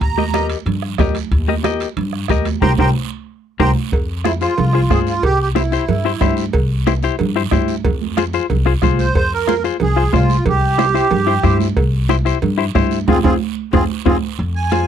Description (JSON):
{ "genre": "latin, cumbia", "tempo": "184 BPM", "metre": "4/4", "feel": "straight", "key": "F harmonic minor from 3.9 s", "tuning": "A4 = 440 Hz", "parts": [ { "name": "accordion", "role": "melody", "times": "0.0-0.5, 2.6-6.3, 9.0-14.9 s", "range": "C4 to C6", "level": "-19 LUFS", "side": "right 4 dB", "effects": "light tremolo tuning" }, { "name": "upright bass", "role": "bass", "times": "0.0-14.9 s", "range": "C2 to G2", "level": "-19 LUFS", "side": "left 1 dB", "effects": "none" }, { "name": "bombo", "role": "percussion", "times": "0.0-14.1 s", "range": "none", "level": "-20 LUFS", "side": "equal", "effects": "none" }, { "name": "congas", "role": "percussion", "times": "0.0-14.9 s", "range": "none", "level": "-23 LUFS", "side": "right 14 dB", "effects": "none" }, { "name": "guiro", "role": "percussion", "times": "0.0-14.9 s", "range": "none", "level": "-34 LUFS", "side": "right 19 dB", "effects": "none" }, { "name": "timbales and cowbell", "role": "percussion", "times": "0.0-14.9 s", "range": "none", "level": "-24 LUFS", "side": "right 6 dB", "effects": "none" }, { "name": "semi-hollow electric guitar", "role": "accompaniment", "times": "0.2-14.9 s", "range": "C4 to Eb5", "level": "-19 LUFS", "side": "left 12 dB", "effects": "none" } ], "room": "light reverb", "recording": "dry, close 1970s-style studio recording", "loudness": "-14 LUFS", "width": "side -9 dB against mid", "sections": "0.0-3.9 A section; 3.9-14.4 B section", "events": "drum fill 2.6-3.9, 13.7-14.4; band accent 2.6-3.9, 13.1-14.4; clean electric guitar fill 3.3-3.9", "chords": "0.0 Eb; 2.6 C5; 3.9 Fm; 5.2 C; 7.8 Fm; 10.5 C; 13.1 Fm", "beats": "| 0.01 0.34 0.67 0.99 | 1.32 1.64 1.97 2.30 | 2.62 2.95 3.27 3.60 | 3.93 4.25 4.58 4.91 | 5.23 5.56 5.89 6.21 | 6.54 6.87 7.19 7.52 | 7.84 8.17 8.50 8.83 | 9.15 9.48 9.81 10.13 | 10.46 10.79 11.12 11.44 | 11.77 12.10 12.42 12.75 | 13.08 13.41 13.73 14.06 | 14.39 14.72" }